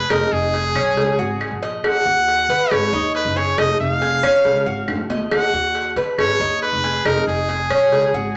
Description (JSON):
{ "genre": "latin, Cuban son and guajira", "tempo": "138 BPM", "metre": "4/4", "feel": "straight", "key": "unclear", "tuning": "A4 = 440 Hz", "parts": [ { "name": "brilliant trumpet", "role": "melody", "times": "0.0-8.4 s", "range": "Ab4 to Gb5", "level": "-22 LUFS", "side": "equal", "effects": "none" }, { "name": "Cuban tres", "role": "arpeggios", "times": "0.0-8.4 s", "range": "Db4 to Eb5", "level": "-24 LUFS", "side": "equal", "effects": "none" }, { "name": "upright bass", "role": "bass", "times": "0.0-8.4 s", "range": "F1 to Eb3", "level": "-29 LUFS", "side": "equal", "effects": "none" }, { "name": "claves", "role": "percussion", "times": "0.1-7.9 s", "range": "none", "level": "-31 LUFS", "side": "equal", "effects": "none" }, { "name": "cowbell and bongos", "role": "percussion", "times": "0.1-8.1 s", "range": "none", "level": "-26 LUFS", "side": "equal", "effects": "none" } ], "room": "wet club reverb, RT60 0.8 s", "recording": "nothing above 7.9 kHz", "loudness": "-19 LUFS", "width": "mono", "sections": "0.0-8.4 A section", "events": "drum fill 4.9-5.3", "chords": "0.1 Fm7b5; 1.0 Dbsus4; 1.8 Ebm; 2.7 Abm; 3.6 Fm7; 4.4 Dbsus4; 5.3 Ebm; 6.2 Abm; 7.1 Fm7b5" }